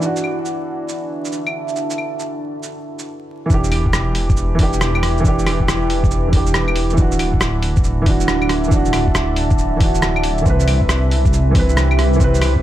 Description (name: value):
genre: future garage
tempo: 138 BPM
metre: 4/4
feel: swing 65% on 16ths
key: E minor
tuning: A4 = 441 Hz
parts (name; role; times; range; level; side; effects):
- felt-muted upright piano; accompaniment; 0.0-12.6 s; E3 to B4; -21 LUFS; right 2 dB; sidechain pumping, low-pass filter, ping-pong delay
- deep dark ambient pad; sustained chords; 0.0-12.6 s; C4 to A5; -24 LUFS; equal; chorus, built-in reverb, sidechain pumping
- lo-fi sampler-style drum kit; drums; 0.0-12.5 s; claves, hi-hat, rim click, shaker; -23 LUFS; equal; none
- dark detuned saw bass; bass; 3.5-12.6 s; D1 to C2; -18 LUFS; equal; none
- electronic kick drum; drums; 3.5-12.6 s; none; -17 LUFS; equal; none
room: light reverb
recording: vinyl crackle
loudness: -14 LUFS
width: side -13 dB against mid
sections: 0.0-3.5 A section; 3.5-12.6 B section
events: filter sweep on felt piano 0.0-3.5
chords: 0.0 Dadd9; 3.5 Em7; 7.0 Dadd9; 10.5 Cmaj7